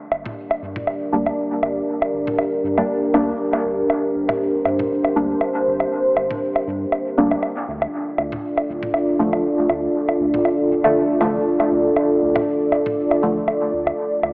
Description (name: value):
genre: dub techno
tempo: 119 BPM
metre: 4/4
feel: swing 55% on 16ths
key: G minor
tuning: A4 = 440 Hz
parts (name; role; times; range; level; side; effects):
- dark analog pad; sustained chords; 0.3-14.3 s; D4 to D5; -19 LUFS; equal; chorus
- round analog bass; bass; 0.1-14.3 s; D1 to G2; -33 LUFS; equal; none
- electronic woodblock and toms; percussion; 0.1-14.3 s; none; -24 LUFS; equal; dub echo
- deep mellow chord stab; stabs; 1.1-13.3 s; D3 to D4; -22 LUFS; equal; chorus, phaser, dub echo
room: moderate lush hall reverb, RT60 1.9 s, digital ambience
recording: AM radio sound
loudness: -17 LUFS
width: side -28 dB against mid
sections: 0.0-14.3 A section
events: none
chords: 0.0 Gm; 7.4 Dm